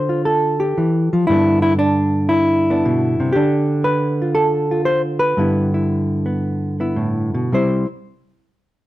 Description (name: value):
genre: solo jazz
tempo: 108-121 BPM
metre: 4/4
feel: swing 69% on 8ths, rubato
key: C major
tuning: A4 = 440 Hz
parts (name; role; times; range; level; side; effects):
- hollow-body jazz guitar; solo; 0.0-7.9 s; G2 to C5; -15 LUFS; equal; none
room: light reverb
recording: none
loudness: -15 LUFS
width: side -16 dB against mid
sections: 0.0-7.5 A section; 7.5-8.9 B section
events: none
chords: 0.0 Dm9; 1.3 G6; 3.3 Dm; 5.4 G69; 7.5 C